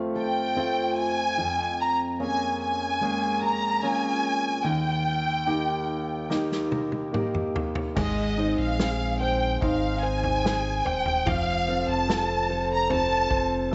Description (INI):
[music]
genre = pop ballad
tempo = 73 BPM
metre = 4/4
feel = straight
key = Ab major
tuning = A4 = 440 Hz
[part]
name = clear concert grand piano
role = accompaniment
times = 0.0-13.7 s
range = Eb2 to C5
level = -32 LUFS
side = equal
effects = none
[part]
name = fingerpicked steel-string acoustic guitar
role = arpeggios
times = 0.0-13.7 s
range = F2 to C5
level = -33 LUFS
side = equal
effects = slapback echo
[part]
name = warm studio violin section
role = melody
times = 0.2-13.7 s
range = Eb5 to Bb5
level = -29 LUFS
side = equal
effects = none
[part]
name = natural country drum kit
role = drums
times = 6.3-13.7 s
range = crash cymbal, kick drum, snare drum, toms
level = -33 LUFS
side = equal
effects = none
[part]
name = sub bass with octave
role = bass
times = 8.0-13.7 s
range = Eb1 to Bb1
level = -33 LUFS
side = equal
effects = none
[sound]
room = wet echo chamber reverb, RT60 2.1 s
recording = nothing above 7.9 kHz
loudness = -26 LUFS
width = mono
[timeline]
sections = 0.0-8.0 A section; 8.0-13.7 B section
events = drum fill 6.3-8.0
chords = 0.0 F; 1.4 Bbm7/F; 4.6 Eb; 8.0 Ab; 11.3 F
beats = 0.56 | 1.37 2.19 3.01 3.83 | 4.64 5.47 6.30 7.13 | 7.97 8.79 9.62 10.44 | 11.27 12.09 12.90 13.71